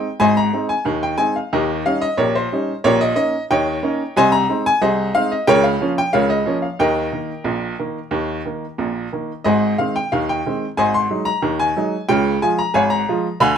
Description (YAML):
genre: ragtime piano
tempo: 91 BPM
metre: 2/4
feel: straight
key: Ab major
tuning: A4 = 444 Hz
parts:
  - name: bright upright piano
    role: solo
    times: 0.0-13.6 s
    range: Ab1 to C6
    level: -16 LUFS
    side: equal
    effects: none
room: moderate studio reverb, RT60 0.8 s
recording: band playing live in one room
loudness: -16 LUFS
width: side -8 dB against mid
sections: 0.0-13.6 A section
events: none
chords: 0.0 Ab; 1.5 Eb7/Bb; 4.2 Ab/C; 5.5 Bbm/Db; 6.8 Eb; 9.4 Ab; 10.8 Ab7; 12.1 Db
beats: | 0.22 0.88 | 1.54 2.19 | 2.85 3.50 | 4.16 4.82 | 5.47 6.13 | 6.80 7.46 | 8.12 8.79 | 9.45 10.11 | 10.77 11.43 | 12.08 12.74 | 13.39